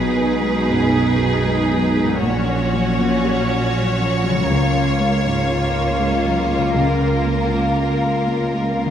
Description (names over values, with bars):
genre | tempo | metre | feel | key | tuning
cinematic | 79 BPM | 3/4 | rubato | F# major | A4 = 440 Hz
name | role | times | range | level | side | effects
rich symphonic violin section | melody | 0.0-8.9 s | A#4 to C#5 | -25 LUFS | left 2 dB | none
warm symphonic violin section | second line | 0.0-8.9 s | E#4 to G#4 | -24 LUFS | left 1 dB | none
felt-muted upright piano | accompaniment | 0.0-8.9 s | A#1 to C#5 | -21 LUFS | equal | none
rich symphonic viola section | accompaniment | 0.0-8.9 s | A#3 to D#4 | -26 LUFS | right 1 dB | none
concert harp | arpeggios | 0.0-8.9 s | A#2 to C#5 | -28 LUFS | left 6 dB | none
rich chamber double bass section | bass | 0.0-8.9 s | A#1 to C#2 | -25 LUFS | right 2 dB | none
rich symphonic cello section | bass | 0.0-8.9 s | C#2 to B2 | -24 LUFS | right 2 dB | none
timpani | percussion | 6.7-7.8 s | none | barely audible | none | none
room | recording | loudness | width
wet recital hall reverb, RT60 1.4 s | recorded in a church or concert hall | -16 LUFS | side -9 dB against mid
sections
0.0-8.9 A section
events
none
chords
0.0 B6; 2.2 F#/A#; 4.5 C#6; 6.7 A#m/C#